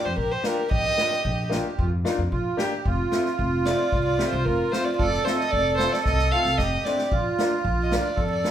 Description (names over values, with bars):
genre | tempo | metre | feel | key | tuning
klezmer | 113 BPM | 4/4 | straight | Bb major | A4 = 440 Hz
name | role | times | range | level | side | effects
dark violin | melody | 0.0-8.5 s | Bb4 to F5 | -25 LUFS | equal | none
accordion | second line | 0.0-8.5 s | Eb4 to A4 | -27 LUFS | right 4 dB | light tremolo tuning
clear upright piano | accompaniment | 0.0-8.5 s | A3 to G4 | -30 LUFS | left 4 dB | none
upright bass | bass | 0.1-8.4 s | F1 to F2 | -27 LUFS | equal | none
street-band drum kit | drums | 0.2-8.5 s | kick drum, snare drum | -30 LUFS | equal | none
room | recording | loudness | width
moderate large studio reverb, RT60 0.8 s | band playing live in one room | -21 LUFS | side -10 dB against mid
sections
0.0-8.5 A section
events
drum fill 6.1-7.1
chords
0.0 Bb; 2.9 F; 7.1 Bb